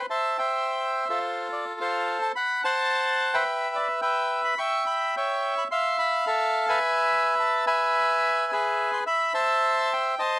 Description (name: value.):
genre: tango.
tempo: 107 BPM.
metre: 4/4.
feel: rubato.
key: A minor.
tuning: A4 = 441 Hz.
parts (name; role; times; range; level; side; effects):
bandoneon; solo; 0.0-10.4 s; F4 to C#6; -22 LUFS; equal; none.
room: light reverb.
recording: close, detailed microphones.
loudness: -22 LUFS.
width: side -17 dB against mid.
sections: 0.1-10.4 A section.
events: none.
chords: 0.1 Am; 1.2 F; 2.3 Am13; 3.5 G6/B; 4.6 C#m7b5; 5.7 Fmaj7#11; 6.8 E; 9.1 Am.